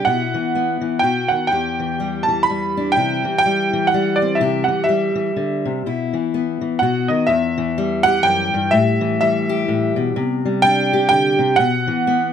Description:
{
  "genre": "acoustic folk duo or small band",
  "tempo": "125 BPM",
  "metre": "3/4",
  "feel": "swing 59% on 8ths",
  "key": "E minor",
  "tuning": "A4 = 440 Hz",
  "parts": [
    { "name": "bright upright piano", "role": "melody", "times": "0.0-12.3 s", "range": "D5 to B5", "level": "-18 LUFS", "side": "right 2 dB", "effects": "none" },
    { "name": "fingerpicked steel-string acoustic guitar", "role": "accompaniment", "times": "0.0-12.3 s", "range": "E2 to G4", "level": "-19 LUFS", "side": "left 2 dB", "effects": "none" }
  ],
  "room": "light reverb",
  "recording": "close, detailed microphones",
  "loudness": "-16 LUFS",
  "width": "side -8 dB against mid",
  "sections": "0.0-7.3 A section; 7.3-12.3 A section",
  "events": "none",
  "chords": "0.1 Bsus4; 1.0 B; 1.5 Em; 3.0 C; 4.4 Cadd9; 5.8 Bsus4; 6.8 B; 7.3 Em; 8.7 A5; 10.2 Csus2; 11.6 Bsus4"
}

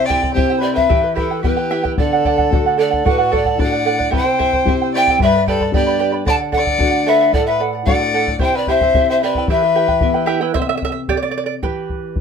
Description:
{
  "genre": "andean folk, Andean ensemble",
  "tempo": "112 BPM",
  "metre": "2/4",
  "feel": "straight",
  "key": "unclear",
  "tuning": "A4 = 440 Hz",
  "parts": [
    { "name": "breathy reedy pan flute", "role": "melody", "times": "0.0-10.3 s", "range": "A4 to A5", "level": "-17 LUFS", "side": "left 1 dB", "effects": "none" },
    { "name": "warm violin", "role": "second line", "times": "0.0-10.3 s", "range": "E4 to D5", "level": "-22 LUFS", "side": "left 4 dB", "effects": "none" },
    { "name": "charango", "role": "accompaniment", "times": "0.0-12.2 s", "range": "E4 to B5", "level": "-20 LUFS", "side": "right 9 dB", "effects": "none" },
    { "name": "nylon-string guitar", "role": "accompaniment", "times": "0.0-12.2 s", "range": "G2 to G4", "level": "-22 LUFS", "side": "left 5 dB", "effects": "none" },
    { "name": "bombo", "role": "percussion", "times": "0.1-12.2 s", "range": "none", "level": "-20 LUFS", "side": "left 1 dB", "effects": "none" }
  ],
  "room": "light reverb",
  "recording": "minimal, uncompressed stereo recording",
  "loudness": "-14 LUFS",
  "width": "side -6 dB against mid",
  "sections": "0.0-2.0 A section; 2.0-10.6 A section; 10.6-12.2 B section",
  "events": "charango solo 10.6-12.2",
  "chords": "0.0 C; 0.9 Em; 2.0 D; 4.1 C; 5.2 G; 6.3 D; 8.4 C; 9.5 Em; 10.6 C5; 11.6 Em"
}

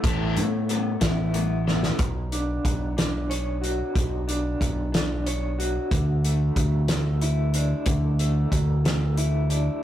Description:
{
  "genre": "quiet-loud alternative rock",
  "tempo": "61 BPM (dotted quarters)",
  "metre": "6/8",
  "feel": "straight",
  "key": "B minor",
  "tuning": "A4 = 440 Hz",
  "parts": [
    { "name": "electric guitar through a small old amp", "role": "arpeggios", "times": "0.0-9.8 s", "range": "A2 to C#5", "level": "-30 LUFS", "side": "equal", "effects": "tremolo" },
    { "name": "cranked stack guitar", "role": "riff", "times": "0.0-2.0 s", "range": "A3 to E4", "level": "-29 LUFS", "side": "left 5 dB", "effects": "overdrive, spring reverb" },
    { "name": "picked electric bass", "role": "bass", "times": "0.0-9.7 s", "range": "A1 to A2", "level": "-24 LUFS", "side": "equal", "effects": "none" },
    { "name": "loose indie drum kit", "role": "drums", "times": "0.0-9.7 s", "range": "hi-hat, kick drum, snare drum", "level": "-26 LUFS", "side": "equal", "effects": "none" }
  ],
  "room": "moderate studio reverb, RT60 0.6 s",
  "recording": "rough rehearsal-room recording",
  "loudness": "-22 LUFS",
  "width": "side -12 dB against mid",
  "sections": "0.0-2.0 A section; 2.0-9.8 B section",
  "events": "drum fill 1.7-2.0",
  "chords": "0.0 Asus2; 2.0 Bmadd9; 5.9 Dadd9"
}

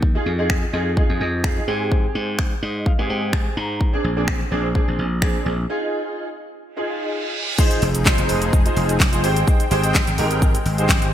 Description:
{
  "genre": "dance-pop",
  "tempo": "127 BPM",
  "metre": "4/4",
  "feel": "straight",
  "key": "F dorian",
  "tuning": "A4 = 440 Hz",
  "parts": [
    { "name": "slap bass", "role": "bass", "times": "0.0-11.1 s", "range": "F1 to Ab2", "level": "-23 LUFS", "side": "equal", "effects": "sidechain pumping" },
    { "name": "pop drum kit", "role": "drums", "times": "0.0-11.1 s", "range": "crash cymbal, finger snaps, handclaps, hi-hat, kick drum, shaker, snare drum", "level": "-19 LUFS", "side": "equal", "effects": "gated reverb" },
    { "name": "warm baby grand piano", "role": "accompaniment", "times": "0.1-11.1 s", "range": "C4 to Bb5", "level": "-24 LUFS", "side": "right 1 dB", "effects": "ensemble chorus, sidechain pumping" },
    { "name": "reverse cymbal and impact", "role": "sound effects", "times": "6.8-9.5 s", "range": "none", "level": "-29 LUFS", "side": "right 2 dB", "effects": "none" },
    { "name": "soft supersaw", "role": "sustained chords", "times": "7.6-11.1 s", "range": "F3 to G5", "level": "-26 LUFS", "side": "equal", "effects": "phaser, sidechain pumping" }
  ],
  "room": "light reverb, digital ambience",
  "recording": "bright 1980s-style digital production",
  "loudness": "-18 LUFS",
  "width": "side -11 dB against mid",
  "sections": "0.0-7.6 A section; 7.6-11.1 B section",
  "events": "grand piano fill 2.4-3.8; break 5.7-7.6; reverse cymbal 6.8-7.6; impact 7.6-9.5",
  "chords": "0.0 Fm7; 1.7 Abmaj7; 3.8 Bb9; 5.7 Fm7; 9.2 Abmaj7"
}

